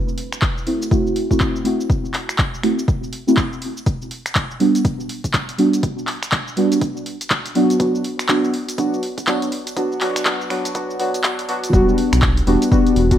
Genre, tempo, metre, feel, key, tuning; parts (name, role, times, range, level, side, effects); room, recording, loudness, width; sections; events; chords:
deep house; 122 BPM; 4/4; swing 60% on 16ths; E minor; A4 = 441 Hz
deep mellow chord stab; stabs; 0.0-13.2 s; F#3 to B4; -18 LUFS; equal; chorus, cassette tape, sidechain pumping, tape echo
punchy analog drum machine; drums; 0.1-13.2 s; finger snaps, handclaps, hi-hat, shaker; -23 LUFS; equal; overdrive, studio reverb
electronic kick drum; drums; 0.4-13.2 s; -20 LUFS; equal; overdrive, studio reverb
round analog bass; bass; 11.7-13.2 s; E1 to B1; -17 LUFS; equal; sidechain pumping
moderate plate reverb, RT60 1.4 s, digital ambience; high-pass filter, faint mains hum; -17 LUFS; side -11 dB against mid
0.0-11.7 A section; 11.7-13.2 B section
build-up 0.0-11.7; filter sweep on synth stab 0.0-11.7; filter sweep 0.0-11.7; drop 11.7-13.2
0.0 F#m7b5; 3.9 Gmaj7; 7.6 Bm/F#; 11.7 Em7